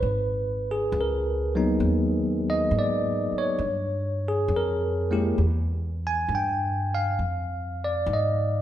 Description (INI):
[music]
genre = jazz ballad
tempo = 67 BPM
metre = 4/4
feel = swing 69% on 8ths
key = unclear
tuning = A4 = 442 Hz
[part]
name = bell-like tine electric piano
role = accompaniment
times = 0.0-8.6 s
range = Gb3 to Ab5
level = -25 LUFS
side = equal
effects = medium stereo tremolo
[part]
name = upright bass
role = bass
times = 0.0-8.6 s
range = Ab1 to Ab2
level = -28 LUFS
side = equal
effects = none
[sound]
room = wet recital hall reverb, RT60 1.4 s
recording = recorded in a church or concert hall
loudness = -23 LUFS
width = side -12 dB against mid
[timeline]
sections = 0.0-8.6 A section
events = none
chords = 0.0 Abm9; 3.6 Fmadd9; 5.4 Em; 7.2 Fm7